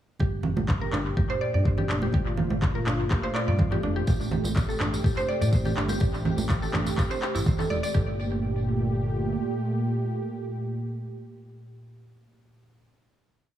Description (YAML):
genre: afro house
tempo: 124 BPM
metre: 4/4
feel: swing 53% on 16ths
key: G minor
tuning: A4 = 439 Hz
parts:
  - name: warm analog pad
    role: sustained chords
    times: 0.2-12.5 s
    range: Bb2 to G4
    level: -31 LUFS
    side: right 1 dB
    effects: chorus, sidechain pumping
  - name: mallet-like synth pluck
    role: arpeggios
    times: 0.2-8.2 s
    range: D4 to D5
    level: -32 LUFS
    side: equal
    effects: chorus, sidechain pumping, analog delay
  - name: smooth gliding synth bass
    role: bass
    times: 0.2-9.4 s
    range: E1 to A2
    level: -29 LUFS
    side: equal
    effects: sidechain pumping
  - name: electronic kick drum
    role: drums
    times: 0.2-8.1 s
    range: none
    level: -26 LUFS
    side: equal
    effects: none
  - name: congas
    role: percussion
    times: 0.2-7.8 s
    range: none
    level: -32 LUFS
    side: right 4 dB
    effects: analog delay
  - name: afro-pop drum kit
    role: drums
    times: 0.7-7.4 s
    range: handclaps, toms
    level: -33 LUFS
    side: equal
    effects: analog delay
  - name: tambourine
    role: percussion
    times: 4.1-7.9 s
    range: none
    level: -41 LUFS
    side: right 1 dB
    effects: analog delay
room: light reverb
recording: echo-heavy mix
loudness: -24 LUFS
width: side -11 dB against mid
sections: 0.2-7.9 groove; 7.9-11.8 final chord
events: none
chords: 0.2 Gmadd9; 4.1 Am7; 7.9 Gmadd9